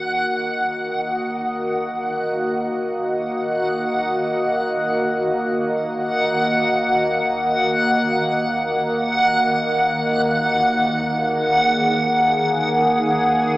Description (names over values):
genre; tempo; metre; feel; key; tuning
dark ambient drone; free time; none; none; Eb minor; A4 = 440 Hz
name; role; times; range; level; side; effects
sweeping resonant pad; sustained chords; 0.0-13.6 s; Bb3 to Gb5; -21 LUFS; equal; chorus, shimmer reverb
swarming drone; drone; 0.0-13.6 s; Eb2 to Eb3; -33 LUFS; equal; built-in reverb
backwards swelling texture; texture; 0.0-13.6 s; Gb5; -20 LUFS; equal; built-in reverb, shimmer reverb
room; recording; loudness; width
wet huge ambient reverb, RT60 7.0 s; small speaker sound; -18 LUFS; side -18 dB against mid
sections
0.0-13.6 A section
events
fade-in on synth drone 0.0-13.6; fade-in on analog synth pad 0.0-13.6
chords
0.0 Ebm; 10.6 Gbadd9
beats
free time